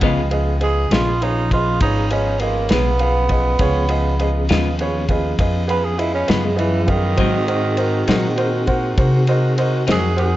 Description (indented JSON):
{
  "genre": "slow blues",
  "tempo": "67 BPM (dotted quarters)",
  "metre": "12/8",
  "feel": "straight",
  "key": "Db mixolydian",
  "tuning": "A4 = 440 Hz",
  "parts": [
    { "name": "clean electric guitar", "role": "accompaniment", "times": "0.0-10.1 s", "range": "Ab2 to F4", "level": "-22 LUFS", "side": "left 6 dB", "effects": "tremolo" },
    { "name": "clear grand piano", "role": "accompaniment", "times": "0.0-10.4 s", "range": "F4 to Gb5", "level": "-23 LUFS", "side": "right 2 dB", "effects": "none" },
    { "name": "mellow tonewheel organ", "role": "sustained chords", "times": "0.0-10.4 s", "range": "F3 to Ab4", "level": "-27 LUFS", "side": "equal", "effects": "slow rotary speaker, chorus vibrato" },
    { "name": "upright bass", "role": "bass", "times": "0.0-10.4 s", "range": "Ab1 to C3", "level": "-20 LUFS", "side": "equal", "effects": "none" },
    { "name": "warm soul drum kit", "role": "drums", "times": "0.0-10.3 s", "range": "kick drum, ride cymbal, snare drum", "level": "-23 LUFS", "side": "equal", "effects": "none" },
    { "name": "growling tenor saxophone", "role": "second line", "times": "0.6-10.4 s", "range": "Eb3 to Cb5", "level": "-22 LUFS", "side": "right 3 dB", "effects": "tape echo" },
    { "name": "warm saxophone section", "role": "sustained chords", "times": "7.2-10.4 s", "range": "Ab3 to Gb4", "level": "-31 LUFS", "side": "left 2 dB", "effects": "none" }
  ],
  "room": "light reverb",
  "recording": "worn, warbling old tape, cassette tape, warbly pitch drift, nothing above 7.7 kHz",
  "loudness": "-15 LUFS",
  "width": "side -15 dB against mid",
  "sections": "0.0-10.4 A section",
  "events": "tenor saxophone solo 0.0-10.4",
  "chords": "0.0 Db7; 7.2 Ab7",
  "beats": "| 0.02 0.92 1.81 2.71 | 3.61 4.50 5.40 6.29 | 7.19 8.09 8.98 9.88"
}